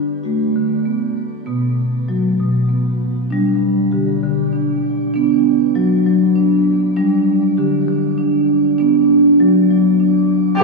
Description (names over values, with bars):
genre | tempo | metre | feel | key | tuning
world meditative | 66 BPM (dotted quarters) | 6/8 | straight | B hirajoshi | A4 = 440 Hz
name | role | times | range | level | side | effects
marimba with soft mallets | arpeggios | 0.0-10.6 s | B2 to G4 | -14 LUFS | equal | analog delay, shimmer reverb
room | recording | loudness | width
wet lush hall reverb, RT60 2.8 s | dreamy mix soaked in reverb, studio ambience | -14 LUFS | side -2 dB against mid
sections
0.0-3.3 A section; 3.3-10.6 B section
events
none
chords
0.0 D; 1.5 B5; 3.3 G5; 5.1 Bm; 7.0 G5; 8.8 Bm